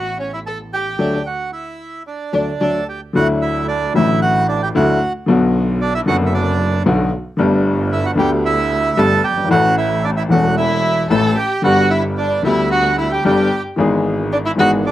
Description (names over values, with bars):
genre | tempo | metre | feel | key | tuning
tango | 113 BPM | 4/4 | rubato | D major | A4 = 438 Hz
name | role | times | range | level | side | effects
bandoneon | melody | 0.0-14.9 s | C#4 to A5 | -19 LUFS | right 4 dB | slapback echo
dark violin | second line | 0.0-2.8, 10.6-14.9 s | C#4 to A4 | -22 LUFS | left 3 dB | none
dark upright piano | accompaniment | 0.0-14.9 s | E1 to A4 | -16 LUFS | left 2 dB | none
clear double bass | bass | 0.0-14.9 s | E1 to D2 | -23 LUFS | right 2 dB | none
room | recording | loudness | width
little or no reverb | recorded outdoors, with no room sound | -14 LUFS | side -13 dB against mid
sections
0.0-3.1 A section; 3.1-14.9 B section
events
band accent 1.0-3.1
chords
0.0 Aadd9; 1.0 D; 3.1 Dadd9; 5.3 Bm; 7.4 Gadd9; 9.5 A; 11.6 G; 13.8 E/G#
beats
0.46 | 0.99 1.52 2.06 2.61 | 3.15 3.69 4.22 4.75 | 5.28 5.81 6.34 6.86 | 7.39 7.92 8.44 8.97 | 9.51 10.04 10.57 11.10 | 11.64 12.18 12.71 13.24 | 13.78 14.31 14.84